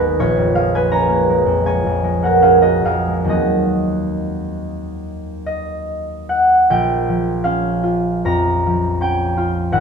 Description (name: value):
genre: classical, solo harp piece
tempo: 67-86 BPM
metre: 4/4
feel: rubato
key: Eb minor, Bb minor from 6.7 s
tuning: A4 = 440 Hz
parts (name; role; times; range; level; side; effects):
- concert harp; solo; 0.0-9.8 s; Ab1 to Bb5; -15 LUFS; equal; none
room: moderate recital hall reverb, RT60 1.8 s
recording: close, detailed microphones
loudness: -14 LUFS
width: side -6 dB against mid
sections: 0.0-6.7 A section; 6.7-9.8 B section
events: none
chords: 0.2 Bbm7; 3.3 Ebm6; 6.7 Bbm6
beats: | 0.18 0.92 1.67 2.46 | 3.31 4.19 5.04 5.88 | 6.70 7.46 8.28 9.03 | 9.73